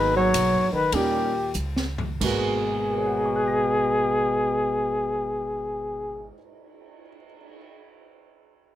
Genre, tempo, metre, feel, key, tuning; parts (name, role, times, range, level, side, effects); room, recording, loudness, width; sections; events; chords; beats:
jazz, small-group swing and bop; 87-110 BPM; 4/4; swing 66% on 8ths; G# minor; A4 = 440 Hz
breathy flugelhorn; melody; 0.0-6.3 s; G4 to C#5; -24 LUFS; left 2 dB
breathy trombone; second line; 0.0-6.3 s; A#2 to F#3; -28 LUFS; right 2 dB
warm baby grand piano; accompaniment; 0.0-7.6 s; G#2 to A#6; -30 LUFS; right 4 dB
upright bass; bass; 0.0-6.3 s; F#1 to D#2; -34 LUFS; equal
open jazz drum kit; drums; 0.3-7.6 s; crash cymbal, cymbal swell, hi-hat, kick drum, ride cymbal, snare drum, toms; -33 LUFS; equal
light reverb; -22 LUFS; side -12 dB against mid
0.0-2.2 A section; 2.2-7.7 B section
slowing down 0.0-2.2; drum fill 1.5-2.2
0.0 G#m7; 0.9 D#7; 2.2 G#m7
0.35 0.93 1.54 | 2.21 2.90 3.59 4.28 | 4.98 5.67 6.36 7.05